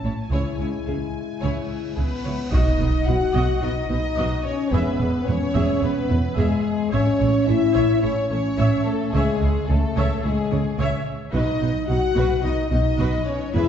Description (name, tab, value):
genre	cinematic, epic orchestral film score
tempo	109 BPM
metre	4/4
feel	straight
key	unclear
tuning	A4 = 444 Hz
part	rich symphonic violin section	melody	0.0-13.7 s	G#4 to A5	-35 LUFS	left 2 dB	none
part	warm symphonic violin section	second line	0.0-13.7 s	G#4 to F#5	-32 LUFS	left 3 dB	none
part	warm French horn section	sustained chords	0.0-13.7 s	G#3 to F#4	-23 LUFS	left 2 dB	none
part	rich symphonic cello section	bass	0.0-13.6 s	E2 to C#3	-27 LUFS	right 1 dB	none
part	warm symphonic double bass section	bass	0.0-13.6 s	E1 to C#2	-24 LUFS	right 1 dB	none
part	rich symphonic viola section	accompaniment	0.1-13.7 s	B3 to E5	-32 LUFS	equal	none
part	cymbal swell and impact	sound effects	2.2-4.7 s	none	-31 LUFS	equal	none
room	wet scoring stage reverb, RT60 2.0 s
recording	heard from further back in the room, nothing above 8.0 kHz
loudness	-19 LUFS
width	side -8 dB against mid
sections	0.0-2.5 A section; 2.5-13.7 B section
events	cymbal swell 2.2-2.5; impact 2.5-4.7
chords	0.3 C#m; 2.5 B; 4.7 E; 6.9 A; 9.1 C#m; 11.3 B